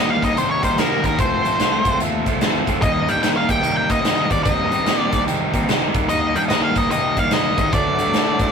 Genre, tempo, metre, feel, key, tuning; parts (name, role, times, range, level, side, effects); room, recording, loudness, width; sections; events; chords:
blues rock power trio and southern rock; 147 BPM; 4/4; swing 64% on 8ths; A4 = 439 Hz
octave-fuzz lead guitar; melody; 0.0-8.5 s; Bb4 to G5; -20 LUFS; left 1 dB; distortion
distorted electric guitar; riff; 0.0-8.5 s; D3 to F4; -21 LUFS; equal; distortion
fuzz fingered electric bass; bass; 0.0-8.5 s; F1 to Eb3; -27 LUFS; equal; overdrive
big rock drum kit; drums; 0.2-8.5 s; hi-hat, kick drum, snare drum; -21 LUFS; equal
moderate booth ambience, RT60 0.2 s; rough rehearsal-room recording, tube saturation; -16 LUFS; side -6 dB against mid
0.0-8.5 A section
0.0 Eb; 1.2 F; 2.8 Eb; 7.7 D